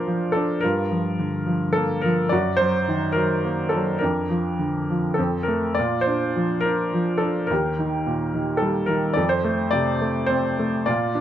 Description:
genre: classical, lyrical solo piano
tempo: 106 BPM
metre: 3/4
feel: rubato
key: Bb major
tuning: A4 = 440 Hz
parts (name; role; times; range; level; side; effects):
- clear upright piano; solo; 0.0-11.2 s; Eb2 to D5; -20 LUFS; equal; none
room: light reverb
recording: close, detailed microphones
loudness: -20 LUFS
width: side -11 dB against mid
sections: 0.0-11.2 A section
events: none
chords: 0.0 Bb; 0.6 Gm7; 2.3 Ebm/Gb; 4.0 Bb/F; 5.2 F; 5.8 Bb; 7.5 Eb; 9.2 F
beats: 0.06 | 0.63 1.19 1.76 | 2.32 2.88 3.45 | 4.02 4.59 5.18 | 5.77 6.36 6.93 | 7.50 8.06 8.62 | 9.17 9.74 10.30 | 10.88

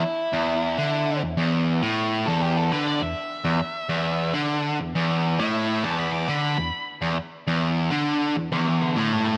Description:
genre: rock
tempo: 134 BPM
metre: 4/4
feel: swing 66% on 8ths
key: E minor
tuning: A4 = 440 Hz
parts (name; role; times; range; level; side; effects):
- octave-fuzz lead guitar; melody; 0.0-9.4 s; E4 to D6; -31 LUFS; equal; distortion, slapback echo
- overdriven electric guitar; riff; 0.0-9.4 s; E2 to D3; -25 LUFS; equal; none
room: light reverb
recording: none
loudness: -24 LUFS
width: mono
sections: 0.0-9.4 A section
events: lead electric guitar solo 0.0-9.4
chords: none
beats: | 0.04 0.48 0.93 1.37 | 1.82 2.27 2.71 3.16 | 3.61 4.05 4.50 4.95 | 5.39 5.84 6.29 6.73 | 7.18 7.63 8.07 8.52 | 8.97

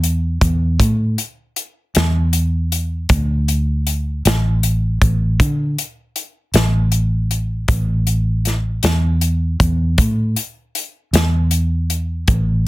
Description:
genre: slow blues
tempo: 52 BPM (dotted quarters)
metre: 12/8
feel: straight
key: unclear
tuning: A4 = 440 Hz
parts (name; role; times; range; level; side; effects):
- vintage muted fingered electric bass; bass; 0.0-12.7 s; A1 to D3; -16 LUFS; equal; none
- natural country drum kit; drums; 0.0-12.5 s; hi-hat, kick drum, snare drum; -18 LUFS; equal; none
room: little or no reverb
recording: dense, heavily limited modern master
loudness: -15 LUFS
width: side -18 dB against mid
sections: 0.0-12.7 A section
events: none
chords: none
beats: 0.80 1.95 | 3.10 4.25 5.40 6.55 | 7.70 8.84 9.99 11.14 | 12.28

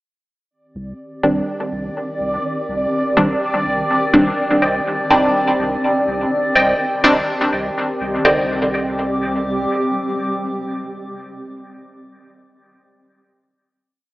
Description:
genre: dub techno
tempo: 124 BPM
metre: 4/4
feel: straight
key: C minor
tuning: A4 = 441 Hz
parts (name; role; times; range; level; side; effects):
- granular cloud pad; sustained chords; 1.2-11.4 s; Eb3 to D6; -21 LUFS; equal; built-in reverb
- bubbling stepped-filter texture; texture; 0.5-8.3 s; D5; -24 LUFS; right 1 dB; chorus, built-in reverb
- warm sub bass; bass; 0.8-9.7 s; C2; -30 LUFS; equal; none
- filtered dub chord stab; stabs; 1.2-11.4 s; D3 to D4; -18 LUFS; equal; phaser, vintage 12-bit sampler grit, dub echo
- wavetable chord stab; riff; 4.6-11.4 s; C5 to G5; -20 LUFS; equal; phaser, dub echo
room: wet plate reverb, RT60 2.3 s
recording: echo-heavy mix, AM radio sound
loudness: -16 LUFS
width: side -18 dB against mid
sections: 0.5-8.2 groove; 8.2-12.1 final chord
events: none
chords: 0.5 Cmadd9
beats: | 0.51 0.99 1.48 1.96 | 2.44 2.93 3.41 3.89 | 4.38 4.86 5.35 5.83 | 6.31 6.80 7.28 7.76 | 8.25 8.73 9.22 9.70 | 10.18 10.67 11.15

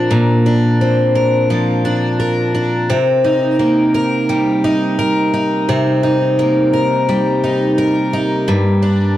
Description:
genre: folktronica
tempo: 86 BPM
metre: 4/4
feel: straight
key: unclear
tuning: A4 = 440 Hz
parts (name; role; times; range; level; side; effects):
- picked twelve-string acoustic guitar; solo; 0.0-9.2 s; G2 to Bb4; -12 LUFS; equal; none
room: light reverb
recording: dark, warm production, vinyl crackle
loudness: -12 LUFS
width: side -13 dB against mid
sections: 0.0-9.2 A section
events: none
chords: 0.0 Bbadd9; 2.9 Cm7; 8.5 Gm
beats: | 0.10 0.80 1.50 2.20 | 2.90 3.59 4.29 4.99 | 5.69 6.38 7.08 7.78 | 8.48

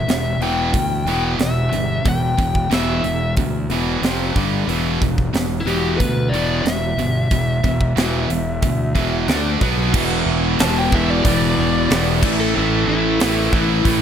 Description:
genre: hard rock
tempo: 91 BPM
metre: 4/4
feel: straight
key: E minor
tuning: A4 = 439 Hz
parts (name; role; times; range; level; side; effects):
- biting lead guitar; melody; 0.0-14.0 s; E4 to A5; -24 LUFS; left 2 dB; overdrive, tape echo
- sludgy distorted guitar; riff; 0.0-14.0 s; E2 to D4; -23 LUFS; left 8 dB; overdrive
- tight distorted guitar; riff; 0.0-14.0 s; E2 to D4; -23 LUFS; right 11 dB; distortion
- fuzz fingered electric bass; bass; 0.0-14.0 s; E1 to D2; -23 LUFS; right 1 dB; overdrive
- tight metal drum kit; drums; 0.1-14.0 s; crash cymbal, hi-hat, kick drum, snare drum; -22 LUFS; right 1 dB; none
- overdriven electric guitar; riff; 9.9-14.0 s; E2 to A3; -25 LUFS; right 1 dB; none
room: light reverb, studio reverb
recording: none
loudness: -16 LUFS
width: side -8 dB against mid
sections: 0.0-9.9 A section; 9.9-14.0 B section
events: lead electric guitar solo 9.9-14.0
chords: 0.0 Em; 4.0 F5; 4.4 G5; 4.7 E5; 9.3 D5; 9.6 B5; 9.9 E5; 12.2 A5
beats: 0.09 0.74 1.40 | 2.06 2.72 3.37 4.03 | 4.69 5.35 6.01 6.66 | 7.32 7.98 8.63 9.29 | 9.94 10.60 11.25 11.90 | 12.55 13.20 13.85

